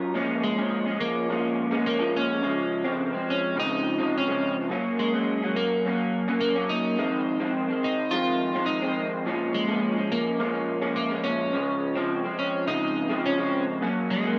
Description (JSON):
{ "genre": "indie pop", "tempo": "105 BPM", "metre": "4/4", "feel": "straight", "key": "Bb minor", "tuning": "A4 = 442 Hz", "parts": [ { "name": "electric guitar through a small old amp", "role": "accompaniment", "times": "0.0-14.4 s", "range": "F2 to Bb4", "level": "-28 LUFS", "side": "equal", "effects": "analog chorus, warbly pitch drift" }, { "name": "clean electric guitar", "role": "melody", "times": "0.4-14.4 s", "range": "Ab3 to F4", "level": "-30 LUFS", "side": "equal", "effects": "analog chorus" } ], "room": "moderate spring reverb, RT60 1.4 s", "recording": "cassette tape, small room reverb", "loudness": "-26 LUFS", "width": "mono", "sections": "0.1-14.4 A section", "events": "none", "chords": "0.1 Bbm7; 2.4 Dbmaj7; 4.7 Gb; 7.0 Fm7; 9.3 Bbm7; 11.5 Dbmaj7; 13.8 Gb", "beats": "| 0.14 0.71 1.28 1.85 | 2.42 2.99 3.56 4.13 | 4.70 5.27 5.84 6.41 | 6.98 7.54 8.12 8.68 | 9.25 9.82 10.39 10.96 | 11.53 12.10 12.66 13.23 | 13.80 14.37" }